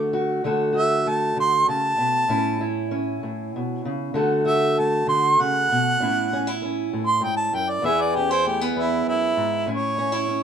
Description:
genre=acoustic country blues, solo or duo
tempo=65 BPM (dotted quarters)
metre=12/8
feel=straight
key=A major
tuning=A4 = 441 Hz
part: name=mellow harmonica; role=melody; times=0.0-10.4 s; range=E4 to D6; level=-21 LUFS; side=right 2 dB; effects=none
part: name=fingerpicked steel-string acoustic guitar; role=accompaniment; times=0.0-10.4 s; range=E2 to A4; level=-23 LUFS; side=equal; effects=none
room=light reverb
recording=minimal, uncompressed stereo recording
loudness=-20 LUFS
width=side -8 dB against mid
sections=0.0-9.7 A section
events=harmonica solo 0.0-9.7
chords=0.0 D; 2.3 A; 4.1 D; 6.0 A; 7.8 E; 9.7 A

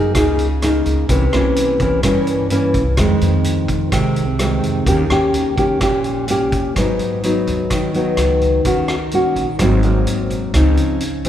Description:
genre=bossa nova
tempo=127 BPM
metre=4/4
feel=straight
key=G# minor from 6.8 s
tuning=A4 = 440 Hz
part: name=nylon-string guitar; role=accompaniment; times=0.0-11.3 s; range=F2 to Ab4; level=-16 LUFS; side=equal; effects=none
part: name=upright bass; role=bass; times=0.0-11.3 s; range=G#1 to G2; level=-20 LUFS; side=equal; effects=none
part: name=vintage drum kit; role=drums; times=0.1-11.3 s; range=hi-hat, kick drum, rim click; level=-24 LUFS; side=right 1 dB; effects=none
room=wet church reverb, RT60 2.5 s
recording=recorded in a church or concert hall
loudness=-14 LUFS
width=side -10 dB against mid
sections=0.0-6.8 A section; 6.8-11.3 B section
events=none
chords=0.0 Gb69; 1.1 C7b9; 3.0 Fm7; 4.9 Eb7; 6.8 G#m7; 8.7 D#m7; 9.6 G#9; 10.5 C#maj9

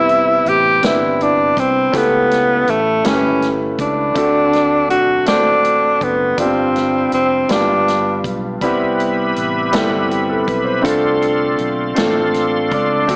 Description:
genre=slow gospel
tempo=54 BPM (dotted quarters)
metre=6/8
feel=straight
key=C major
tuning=A4 = 440 Hz
part: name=breathy tenor saxophone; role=melody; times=0.0-8.3, 12.7-13.2 s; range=A3 to G4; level=-17 LUFS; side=equal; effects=slapback echo
part: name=clear concert grand piano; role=accompaniment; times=0.0-13.2 s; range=G2 to C5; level=-20 LUFS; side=equal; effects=none
part: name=fingered electric bass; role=bass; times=0.0-13.2 s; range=F1 to D2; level=-32 LUFS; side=equal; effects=none
part: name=swinging big-band drum kit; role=drums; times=0.1-13.2 s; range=hi-hat, kick drum, snare drum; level=-27 LUFS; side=equal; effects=none
part: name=bright tonewheel organ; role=sustained chords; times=8.6-13.2 s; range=G4 to C6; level=-23 LUFS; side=equal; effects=fast rotary speaker, overdrive, chorus vibrato
room=moderate large studio reverb, RT60 1.2 s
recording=small speaker sound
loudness=-16 LUFS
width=mono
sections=0.0-13.2 A section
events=none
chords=0.0 Cmaj7; 1.9 A7; 4.2 D7; 6.4 G7sus4; 7.5 G7; 8.6 Cmaj7; 10.9 F6

